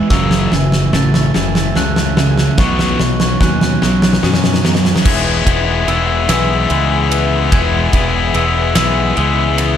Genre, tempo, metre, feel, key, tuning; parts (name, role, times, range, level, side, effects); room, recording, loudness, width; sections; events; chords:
post-rock; 48 BPM (dotted quarters); 6/8; straight; E major; A4 = 440 Hz
soft additive organ-like pad; sustained chords; 0.0-9.8 s; A3 to B5; -28 LUFS; right 2 dB
glockenspiel with soft plastic mallets; arpeggios; 0.0-9.6 s; C#6 to A6; -23 LUFS; right 2 dB; analog delay
twangy electric guitar; arpeggios; 0.0-9.8 s; F#2 to C#4; -23 LUFS; left 1 dB; tremolo, analog delay
thick fuzz guitar; riff; 0.0-5.0 s; F#2 to B3; -20 LUFS; right 10 dB; distortion
tight distorted guitar; riff; 0.0-9.8 s; F#2 to E4; -17 LUFS; left 6 dB; distortion
growling fingered electric bass; bass; 0.1-9.8 s; E1 to F#2; -18 LUFS; equal; overdrive
huge arena drum kit; drums; 0.1-9.8 s; crash cymbal, kick drum, ride cymbal, snare drum; -17 LUFS; equal
light reverb, small room ambience; dark, warm production; -11 LUFS; side -9 dB against mid
0.0-5.1 A section; 5.1-9.8 B section
build-up 0.0-5.1; drum fill 0.0-5.1
0.1 F#m7; 2.6 Badd9; 5.1 E